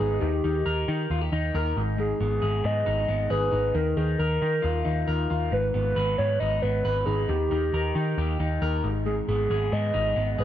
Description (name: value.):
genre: jangly indie pop.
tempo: 136 BPM.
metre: 4/4.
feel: straight.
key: G# dorian.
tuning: A4 = 442 Hz.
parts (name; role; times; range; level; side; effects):
hollow clarinet-like synth lead; melody; 0.0-10.4 s; G4 to D#5; -28 LUFS; right 1 dB; chorus, tape echo.
electric guitar through a small old amp; arpeggios; 0.0-10.4 s; G#2 to B4; -29 LUFS; left 2 dB; phaser, tape echo.
vintage muted picked electric bass; bass; 0.0-10.4 s; G#1 to D#3; -27 LUFS; equal; none.
room: little or no reverb.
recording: none.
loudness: -23 LUFS.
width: side -11 dB against mid.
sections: 0.0-10.4 A section.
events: none.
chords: 0.2 D#; 1.8 G#m; 3.7 D#sus2; 5.5 G#m; 7.3 D#; 8.8 G#m.